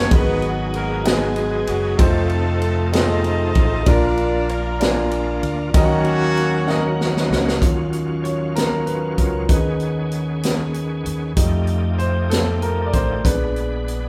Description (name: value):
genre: slow gospel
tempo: 64 BPM (dotted quarters)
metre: 6/8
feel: straight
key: Eb minor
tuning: A4 = 442 Hz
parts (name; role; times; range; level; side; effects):
- warm horn section; melody; 0.0-7.0 s; Gb3 to Eb5; -28 LUFS; equal; none
- warm grand piano; accompaniment; 0.0-14.1 s; Ab2 to F#5; -26 LUFS; equal; none
- fingered electric bass; bass; 0.0-14.1 s; F1 to F2; -25 LUFS; equal; none
- bright tonewheel organ; sustained chords; 0.1-14.1 s; Eb3 to Cb5; -29 LUFS; equal; slow rotary speaker, overdrive, chorus vibrato
- natural country drum kit; drums; 0.1-14.0 s; hi-hat, kick drum, ride cymbal, snare drum; -22 LUFS; equal; none
room: moderate large studio reverb, RT60 1.1 s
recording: band playing live in one room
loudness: -19 LUFS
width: mono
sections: 0.0-7.6 A section; 7.6-14.1 B section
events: drum fill 6.7-7.6; grand piano solo 7.6-14.1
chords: 0.1 Abm7; 2.0 F7; 3.9 Bb; 5.7 Ebm7; 7.6 Ebm9; 9.5 B69/D#; 11.4 F9; 13.2 Bb7b9